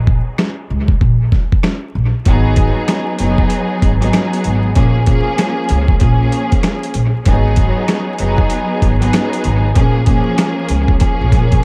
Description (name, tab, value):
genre	hip hop, boom-bap hip-hop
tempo	96 BPM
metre	4/4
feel	swing 63% on 16ths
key	unclear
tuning	A4 = 439 Hz
part	upright bass	bass	0.0-11.6 s	F#1 to A#2	-18 LUFS	equal	none
part	dusty soul sampler-style drum kit	drums	0.1-11.6 s	hi-hat, kick drum, rim click, snare drum	-18 LUFS	equal	overdrive
part	rich studio string section	accompaniment	2.3-11.6 s	E#3 to G#4	-20 LUFS	equal	high-pass filter, low-pass filter, dub echo
room	light reverb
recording	echo-heavy mix, vinyl crackle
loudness	-14 LUFS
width	mono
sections	0.0-11.6 A section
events	break 0.0-2.3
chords	0.0 A#m; 2.3 G#m7; 4.8 A#m7; 7.3 G#m7; 9.8 A#m7